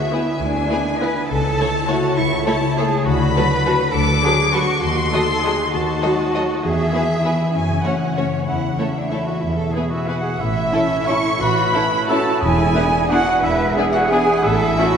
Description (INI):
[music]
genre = classical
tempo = 167-219 BPM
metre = 3/4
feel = rubato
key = A major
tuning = A4 = 439 Hz
[part]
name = warm chamber violin section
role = melody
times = 0.0-15.0 s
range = C#5 to D6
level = -23 LUFS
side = left 2 dB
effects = none
[part]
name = concert harp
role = arpeggios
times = 0.0-15.0 s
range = E2 to E5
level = -24 LUFS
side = left 4 dB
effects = none
[part]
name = warm chamber cello section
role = bass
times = 0.0-15.0 s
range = C#4 to B4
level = -23 LUFS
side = right 2 dB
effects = none
[part]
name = rich chamber violin section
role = second line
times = 0.1-14.9 s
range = E4 to D#5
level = -27 LUFS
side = left 2 dB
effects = none
[part]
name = rich chamber viola section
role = accompaniment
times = 0.1-14.9 s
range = F#3 to F#4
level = -26 LUFS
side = right 1 dB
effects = none
[part]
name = rich chamber double bass section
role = bass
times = 0.4-14.7 s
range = E1 to F#2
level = -25 LUFS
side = right 3 dB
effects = none
[part]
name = bright flute section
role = second line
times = 9.9-14.8 s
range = E5 to C#6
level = -22 LUFS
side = right 1 dB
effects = none
[part]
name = mellow cor anglais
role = second line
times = 9.9-15.0 s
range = E4 to C#5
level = -24 LUFS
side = right 2 dB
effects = none
[part]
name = warm French horn section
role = sustained chords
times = 10.7-14.9 s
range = C#4 to E4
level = -28 LUFS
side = left 2 dB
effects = none
[part]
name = timpani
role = percussion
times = 12.4-12.9 s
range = E2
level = -26 LUFS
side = right 1 dB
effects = none
[sound]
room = wet church reverb, RT60 3.1 s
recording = nothing above 10.9 kHz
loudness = -16 LUFS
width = side -7 dB against mid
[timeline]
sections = 0.0-10.4 A section; 10.4-15.0 B section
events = none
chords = 0.0 E7/D; 1.3 A/C#; 3.1 Bm7/D; 4.8 D#dim7; 6.6 E; 7.5 F#m; 8.5 A/E; 9.4 E; 10.4 A; 12.4 E7; 14.4 A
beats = 0.11 | 0.40 0.70 1.01 | 1.30 1.59 1.89 | 2.18 2.47 2.78 | 3.07 3.36 3.67 | 3.96 4.24 4.54 | 4.83 5.12 5.44 | 5.73 6.03 6.34 | 6.63 6.93 7.24 | 7.54 7.84 8.16 | 8.47 8.79 9.12 | 9.43 9.74 10.07 | 10.39 10.72 11.08 | 11.41 11.74 12.09 | 12.42 12.76 13.11 | 13.44 13.77 14.12 | 14.44 14.78